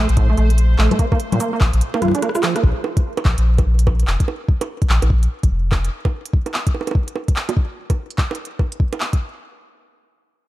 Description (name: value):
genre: IDM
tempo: 146 BPM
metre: 4/4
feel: swing 62% on 16ths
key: unclear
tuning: A4 = 436 Hz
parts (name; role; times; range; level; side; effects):
- deep acid bass; arpeggios; 0.0-2.6 s; A2 to F4; -22 LUFS; right 4 dB; lush chorus, tape echo
- warm sub bass; bass; 0.0-5.9 s; F1 to Bb1; -15 LUFS; equal; none
- bubbling stepped-filter texture; texture; 0.0-2.6 s; C5; -35 LUFS; right 1 dB; chorus, built-in reverb
- organic electronic drum kit; drums; 0.1-9.2 s; bongos, cabasa, congas, handclaps, hi-hat, rim click; -24 LUFS; equal; overdrive
- electronic kick drum; drums; 0.2-9.2 s; none; -17 LUFS; equal; overdrive
room: little or no reverb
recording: dark, warm production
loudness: -16 LUFS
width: side -16 dB against mid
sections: 0.0-2.6 A section; 2.6-9.2 B section; 9.2-10.5 C section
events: drum fill 2.0-2.6; band accent 2.5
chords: 0.0 Bbsus2; 2.6 Bb5; 5.9 N.C.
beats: 0.17 0.58 | 0.99 1.40 1.81 2.22 | 2.63 3.04 3.46 3.87 | 4.28 4.69 5.10 5.51 | 5.92 6.33 6.74 7.16 | 7.57 7.98 8.39 8.80